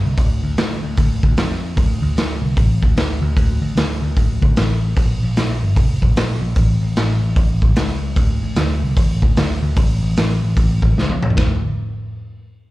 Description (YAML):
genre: blues rock power trio and southern rock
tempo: 150 BPM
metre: 4/4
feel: swing 64% on 8ths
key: D minor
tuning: A4 = 440 Hz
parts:
  - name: picked electric bass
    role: bass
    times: 0.0-11.6 s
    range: F1 to F2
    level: -19 LUFS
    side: equal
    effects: none
  - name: raw garage drum kit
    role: drums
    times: 0.2-11.5 s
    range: hi-hat, kick drum, ride cymbal, snare drum, toms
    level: -17 LUFS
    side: equal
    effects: none
room: little or no reverb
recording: live gig heard through the venue's PA, club reverb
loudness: -15 LUFS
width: side -18 dB against mid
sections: 0.0-11.4 A section; 11.4-12.7 B section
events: drum fill 11.0-11.4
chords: none